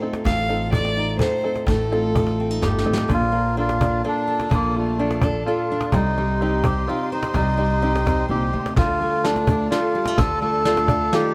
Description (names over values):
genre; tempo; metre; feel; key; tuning
acoustic folk duo or small band; 127 BPM; 3/4; straight; unclear; A4 = 438 Hz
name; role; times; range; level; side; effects
rich fiddle; second line; 0.0-2.8 s; A4 to F5; -27 LUFS; equal; none
fingerpicked steel-string acoustic guitar; accompaniment; 0.0-11.3 s; A2 to D5; -28 LUFS; equal; none
open-back banjo; arpeggios; 0.0-11.3 s; D3 to A4; -30 LUFS; equal; none
cajon; percussion; 0.0-11.2 s; none; -26 LUFS; equal; none
upright bass; bass; 0.3-11.1 s; G1 to D2; -28 LUFS; equal; none
soft brush drum kit; drums; 0.3-3.0, 8.8-11.2 s; hi-hat, kick drum, ride cymbal, snare drum; -30 LUFS; equal; none
melodica; melody; 2.6-11.3 s; A3 to A4; -26 LUFS; equal; plate reverb
warm studio string section; sustained chords; 3.1-11.3 s; F4 to C6; -39 LUFS; equal; none
room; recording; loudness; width
moderate studio reverb, RT60 0.8 s; none; -21 LUFS; mono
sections
0.0-3.1 A section; 3.1-11.3 B section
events
fiddle solo 0.0-3.1; drum fill 2.6-3.1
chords
0.0 F7/A; 3.1 Bbmaj7; 5.9 Cm; 8.8 Dm